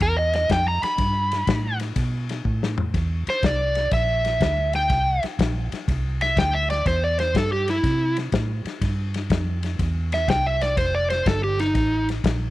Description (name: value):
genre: electric blues shuffle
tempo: 123 BPM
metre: 4/4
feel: swing 67% on 8ths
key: unclear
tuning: A4 = 438 Hz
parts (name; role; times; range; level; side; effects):
- overdriven slide guitar; melody; 0.0-12.1 s; Eb4 to B5; -22 LUFS; equal; none
- vintage muted fingered electric bass; bass; 0.0-12.5 s; F1 to C3; -25 LUFS; right 1 dB; none
- warm soul drum kit; drums; 0.0-12.4 s; kick drum, ride cymbal, snare drum, toms; -26 LUFS; left 2 dB; none
room: small room ambience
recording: 1960s-style stereo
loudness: -20 LUFS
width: side -16 dB against mid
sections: 0.0-2.9 A section; 2.9-12.5 A section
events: electric slide guitar solo 0.0-2.9, 2.9-12.5; drum fill 2.5-2.9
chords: 0.0 N.C.; 1.0 G; 2.9 C7; 10.8 F7